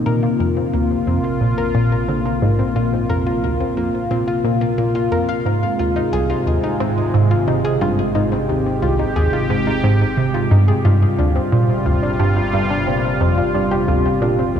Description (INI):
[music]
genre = ambient, sequencer-driven space music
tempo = 89 BPM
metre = 4/4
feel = straight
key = unclear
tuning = A4 = 440 Hz
[part]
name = sweeping resonant pad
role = sustained chords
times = 0.0-14.6 s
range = C3 to G4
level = -20 LUFS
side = equal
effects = chorus
[part]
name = analog drone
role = bass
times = 1.0-14.6 s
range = G1 to Bb1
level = -29 LUFS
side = right 1 dB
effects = chorus
[part]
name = soft round pluck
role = arpeggios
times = 0.1-14.5 s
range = Bb3 to F5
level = -24 LUFS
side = left 2 dB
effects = chorus, auto-pan, cassette tape, ping-pong delay
[part]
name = tight sequenced synth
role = riff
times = 0.1-14.6 s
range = C2 to D3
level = -18 LUFS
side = right 1 dB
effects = chorus, phaser, ping-pong delay
[sound]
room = wet cathedral reverb, RT60 6.6 s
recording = in a vast, echoing space, cassette tape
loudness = -15 LUFS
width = side -8 dB against mid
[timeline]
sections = 0.0-14.6 A section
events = filter sweep on synth arpeggio sound 0.0-14.6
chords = 0.1 Bbsus2; 5.5 Ab6; 10.8 G7sus4